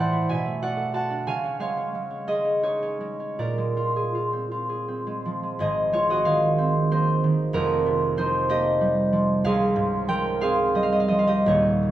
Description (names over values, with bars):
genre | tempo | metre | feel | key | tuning
classical, solo harp piece | 52-64 BPM (dotted quarters) | 6/8 | rubato | unclear | A4 = 439 Hz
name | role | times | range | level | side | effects
concert harp | solo | 0.0-11.9 s | Eb1 to A5 | -21 LUFS | right 1 dB | none
room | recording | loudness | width
wet recital hall reverb, RT60 1.6 s | recorded in a church or concert hall | -21 LUFS | side -12 dB against mid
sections
0.0-5.6 A section; 5.6-11.9 B section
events
none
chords
0.3 Bm7; 1.3 Dbadd9; 3.4 Bb9; 5.6 Ab69; 7.6 Fm11; 9.4 Dbmaj7#11